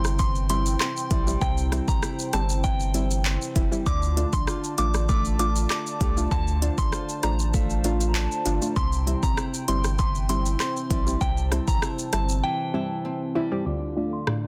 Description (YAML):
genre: dancehall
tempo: 98 BPM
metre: 4/4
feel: straight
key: unclear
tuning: A4 = 440 Hz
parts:
  - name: hollow soft pad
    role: sustained chords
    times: 0.0-14.5 s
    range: D4 to A5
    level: -40 LUFS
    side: equal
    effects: chorus, sidechain pumping, low-pass filter
  - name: nylon-string guitar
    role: arpeggios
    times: 0.0-14.5 s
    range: C3 to F4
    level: -35 LUFS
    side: equal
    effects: low-pass filter, tape echo
  - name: warm sub bass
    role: bass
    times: 0.0-12.4 s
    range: F1 to D2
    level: -28 LUFS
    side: equal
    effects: none
  - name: afro-pop drum kit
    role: drums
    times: 0.0-14.4 s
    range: handclaps, hi-hat, kick drum, rim click, shaker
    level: -29 LUFS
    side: equal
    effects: soft clipping on snare
  - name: soft synth bell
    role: melody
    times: 0.2-14.2 s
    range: G5 to D6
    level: -33 LUFS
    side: equal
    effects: chorus, low-pass filter, tape echo
  - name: soft round pluck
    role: accompaniment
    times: 0.5-14.5 s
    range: D2 to G4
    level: -33 LUFS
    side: equal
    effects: chorus, low-pass filter
  - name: hollow clarinet-like synth lead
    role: second line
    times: 7.5-8.6 s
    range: F5 to Bb5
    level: -37 LUFS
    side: equal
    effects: chorus, tape echo
room: little or no reverb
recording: dense, heavily limited modern master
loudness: -25 LUFS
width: mono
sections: 0.0-13.7 A section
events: break 12.4-13.7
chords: 0.0 C; 3.9 Dm; 8.8 C; 13.7 Dm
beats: 0.19 0.80 | 1.42 2.03 2.64 3.25 | 3.86 4.48 5.09 5.70 | 6.31 6.93 7.54 8.15 | 8.76 9.38 9.99 10.60 | 11.21 11.82 12.44 13.05 | 13.66 14.27